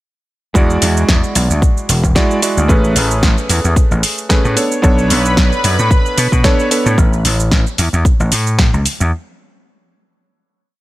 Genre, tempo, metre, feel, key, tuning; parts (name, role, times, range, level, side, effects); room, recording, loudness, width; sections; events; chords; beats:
nu-disco, nu disco; 112 BPM; 4/4; swing 55% on 16ths; A major; A4 = 440 Hz
warm electric grand piano; accompaniment; 0.5-7.0 s; G#3 to D5; -18 LUFS; right 1 dB; sidechain pumping, dub echo
vintage slap bass; bass; 0.6-9.1 s; E1 to B2; -15 LUFS; equal; tube saturation
electronic kick drum; drums; 0.6-8.7 s; -13 LUFS; equal; studio reverb
house drum kit; drums; 0.6-9.1 s; hi-hat, shaker, snare drum; -18 LUFS; right 1 dB; studio reverb
lush unison pad; sustained chords; 4.8-7.0 s; B4 to B5; -21 LUFS; equal; chorus, sidechain pumping
little or no reverb; -11 LUFS; side -17 dB against mid
0.6-9.1 drop
drop 0.6-9.1
0.6 E9; 2.7 Amaj9; 4.6 Bm9; 7.0 A5
| 0.55 1.08 1.62 2.16 | 2.69 3.23 3.76 4.30 | 4.83 5.37 5.91 6.44 | 6.98 7.51 8.05 8.59